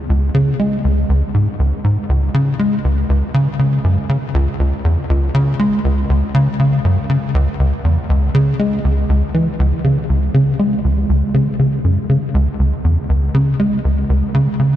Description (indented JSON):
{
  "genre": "ambient",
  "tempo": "120 BPM",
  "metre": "4/4",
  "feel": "straight",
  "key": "C# minor",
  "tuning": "A4 = 440 Hz",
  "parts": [
    { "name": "tight sequencer bass", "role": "solo", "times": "0.1-14.8 s", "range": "C#2 to G#3", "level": "-13 LUFS", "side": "equal", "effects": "lush chorus, ping-pong delay" }
  ],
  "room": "wet huge ambient reverb, RT60 8.3 s",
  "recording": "dreamy mix soaked in reverb",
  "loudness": "-14 LUFS",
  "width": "side -12 dB against mid",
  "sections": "0.0-14.8 A section",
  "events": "none",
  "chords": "none"
}